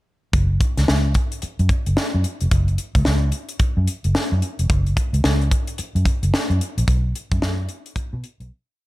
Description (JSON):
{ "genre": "funk", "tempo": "110 BPM", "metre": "4/4", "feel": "swing 60% on 16ths", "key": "F# major", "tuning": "A4 = 440 Hz", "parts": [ { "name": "vintage muted fingered electric bass", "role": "bass", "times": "0.3-8.5 s", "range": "E#1 to B2", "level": "-19 LUFS", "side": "equal", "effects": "none" }, { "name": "crisp fusion drum kit", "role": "drums", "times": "0.3-8.5 s", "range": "hi-hat, kick drum, snare drum", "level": "-21 LUFS", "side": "equal", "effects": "none" } ], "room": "little or no reverb", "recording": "none", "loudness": "-18 LUFS", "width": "side -18 dB against mid", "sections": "0.3-8.9 breakdown", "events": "fade-out 6.9-8.9; break 8.5-8.9", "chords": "none" }